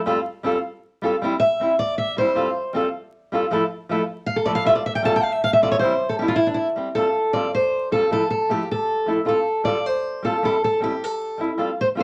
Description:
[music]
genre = highlife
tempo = 104 BPM (dotted quarters)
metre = 12/8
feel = straight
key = F major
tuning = A4 = 440 Hz
[part]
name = flamenco guitar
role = accompaniment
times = 0.1-12.0 s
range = F3 to A4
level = -25 LUFS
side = equal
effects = none
[part]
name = fingerpicked steel-string acoustic guitar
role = melody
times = 1.4-12.0 s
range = D4 to A5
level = -22 LUFS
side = equal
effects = none
[sound]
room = moderate studio reverb, RT60 0.6 s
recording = vinyl crackle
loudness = -22 LUFS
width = mono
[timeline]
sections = 0.0-7.0 A section; 7.0-12.0 B section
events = steel-string acoustic guitar solo 0.0-7.0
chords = 0.1 Fadd9; 1.2 C; 2.4 Fadd9; 3.5 Fmaj7; 4.7 Fadd9; 5.8 C; 7.0 Fadd9; 8.1 Fmaj7; 9.3 Fadd9; 10.4 C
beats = | 0.07 0.64 1.22 1.79 | 2.36 2.94 3.51 4.08 | 4.66 5.23 5.80 6.38 | 6.95 7.53 8.11 8.68 | 9.26 9.84 10.42 10.99 | 11.57

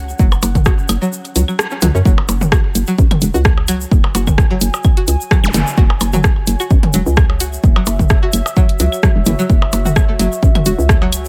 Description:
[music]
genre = minimal techno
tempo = 129 BPM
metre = 4/4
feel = swing 54% on 16ths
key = unclear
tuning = A4 = 439 Hz
[part]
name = hollow knocking FM bass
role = bass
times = 0.0-11.3 s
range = E1 to F#2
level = -19 LUFS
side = equal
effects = sidechain pumping
[part]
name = pulsing gated texture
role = texture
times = 0.0-2.1 s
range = C#4 to F#5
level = -38 LUFS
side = equal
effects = chorus, built-in reverb, sidechain pumping
[part]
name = egg shaker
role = percussion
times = 0.1-11.3 s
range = none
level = -29 LUFS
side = equal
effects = none
[part]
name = string-like resonator pluck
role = riff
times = 0.2-11.1 s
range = E3 to F#4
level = -24 LUFS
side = equal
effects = subtle chorus, sidechain pumping, delay
[part]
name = electronic kick drum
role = drums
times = 0.2-11.0 s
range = none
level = -14 LUFS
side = equal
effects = overdrive, small room ambience
[part]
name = electronic percussion blips, claves and toms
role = percussion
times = 0.3-11.2 s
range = none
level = -24 LUFS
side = equal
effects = small room ambience, delay
[part]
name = house drum kit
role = drums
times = 0.4-11.2 s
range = hi-hat, rim click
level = -21 LUFS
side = equal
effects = overdrive, small room ambience
[part]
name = warbly tape-like pad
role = texture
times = 2.9-11.3 s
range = F#4 to G#5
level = -29 LUFS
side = equal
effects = chorus, built-in reverb, sidechain pumping
[part]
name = zap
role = sound effects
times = 5.4-5.5 s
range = none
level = -27 LUFS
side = equal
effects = none
[sound]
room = little or no reverb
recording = none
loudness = -14 LUFS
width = mono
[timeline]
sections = 0.0-2.1 A section; 2.1-11.3 B section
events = kick drops out 1.1-2.1; band accent 1.6; drop 2.1-11.3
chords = 0.0 F#5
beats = | 0.19 0.66 1.12 1.59 | 2.06 2.52 2.98 3.45 | 3.92 4.38 4.85 5.31 | 5.78 6.24 6.71 7.17 | 7.64 8.10 8.57 9.03 | 9.50 9.96 10.43 10.89

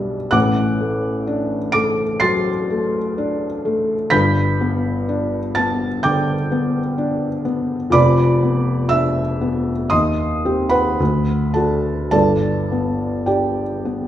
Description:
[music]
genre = classical, romantic nocturne for solo piano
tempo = 51-65 BPM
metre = 4/4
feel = rubato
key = G major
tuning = A4 = 440 Hz
[part]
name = felt-muted upright piano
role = solo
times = 0.0-14.1 s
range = F1 to D7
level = -16 LUFS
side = equal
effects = none
[sound]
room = wet recital hall reverb, RT60 1.4 s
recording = minimal, uncompressed stereo recording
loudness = -16 LUFS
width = side -12 dB against mid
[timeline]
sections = 0.0-14.1 A section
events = none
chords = 0.3 D7/A; 4.1 G; 7.9 Dm69/F; 9.9 Cm/Eb; 11.0 D; 12.1 G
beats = | 0.35 1.29 2.22 3.17 | 4.12 5.09 6.04 6.97 | 7.94 8.92 9.93 11.00 | 12.13 13.28

